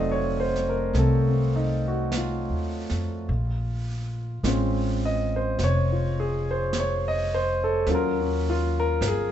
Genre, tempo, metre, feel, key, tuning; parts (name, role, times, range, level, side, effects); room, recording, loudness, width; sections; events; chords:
jazz ballad; 52 BPM; 4/4; swing 69% on 8ths; A4 = 440 Hz
warm grand piano; accompaniment; 0.0-9.3 s; Gb3 to Gb5; -25 LUFS; equal
upright bass; bass; 0.0-9.3 s; F1 to F2; -26 LUFS; equal
jazz brush drum kit; drums; 0.6-9.3 s; brushed snare drum, hi-hat, snare drum; -37 LUFS; right 2 dB
moderate studio reverb, RT60 0.9 s; heard from further back in the room, nothing above 8.0 kHz; -23 LUFS; side -10 dB against mid
0.0-9.3 A section
0.0 F7b9; 3.3 Bbm9; 7.9 Ebm7